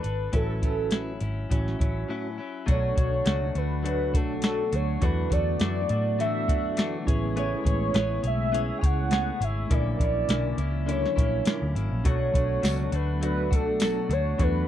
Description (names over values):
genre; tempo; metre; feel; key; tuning
indie pop, bedroom pop; 102 BPM; 4/4; swing 55% on 16ths; unclear; A4 = 440 Hz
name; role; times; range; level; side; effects
warm velvety synth lead; melody; 0.0-14.7 s; A4 to G#5; -29 LUFS; equal; wide subtle chorus, slapback echo
direct-recorded clean electric guitar; accompaniment; 0.0-14.7 s; A2 to C#5; -34 LUFS; left 4 dB; lush chorus, warbly pitch drift
vintage muted picked electric bass; bass; 0.0-14.6 s; G#1 to A2; -28 LUFS; equal; none
soft vintage rhythm box; drums; 0.0-14.5 s; hi-hat, kick drum, snare drum; -26 LUFS; equal; none
mellow tonewheel organ; accompaniment; 0.3-14.7 s; C#4 to D5; -35 LUFS; right 4 dB; fast rotary speaker
string machine, cellos; sustained chords; 2.7-14.7 s; C#3 to F#4; -35 LUFS; equal; ensemble chorus
tambourine; percussion; 12.6-14.0 s; none; -41 LUFS; right 10 dB; none
room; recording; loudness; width
little or no reverb; dry, close 1970s-style studio recording; -23 LUFS; side -11 dB against mid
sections
0.0-2.7 A section; 2.7-14.7 B section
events
break 2.1-2.7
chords
0.3 A6; 2.7 Bm7; 5.0 E9sus4; 7.1 Amaj9; 9.7 F#7b13/A#; 12.0 Bm7